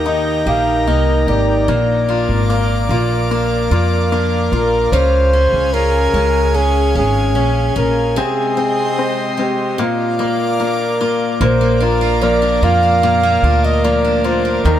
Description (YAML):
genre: pop ballad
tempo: 74 BPM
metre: 4/4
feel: straight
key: unclear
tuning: A4 = 440 Hz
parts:
  - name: breathy flugelhorn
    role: melody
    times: 0.0-14.8 s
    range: F4 to F5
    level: -17 LUFS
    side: right 1 dB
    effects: none
  - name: bright concert grand piano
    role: accompaniment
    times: 0.0-14.8 s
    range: Eb3 to G4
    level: -20 LUFS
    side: left 7 dB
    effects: none
  - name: airy breathy pad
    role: sustained chords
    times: 0.0-14.8 s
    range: Ab3 to Eb6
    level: -22 LUFS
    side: equal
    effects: chorus
  - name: picked steel-string acoustic guitar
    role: arpeggios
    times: 0.0-14.8 s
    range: Bb2 to Ab4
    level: -23 LUFS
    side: right 4 dB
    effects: none
  - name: upright bass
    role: bass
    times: 0.0-14.8 s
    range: Ab1 to F2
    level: -17 LUFS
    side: right 1 dB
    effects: none
room: light reverb, small room ambience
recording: none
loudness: -13 LUFS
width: side -11 dB against mid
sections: 0.0-11.4 A section; 11.4-14.8 B section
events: break 8.2-11.4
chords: 0.0 Eb; 1.7 Bb; 4.9 Db; 8.2 Ab/C; 9.8 Bb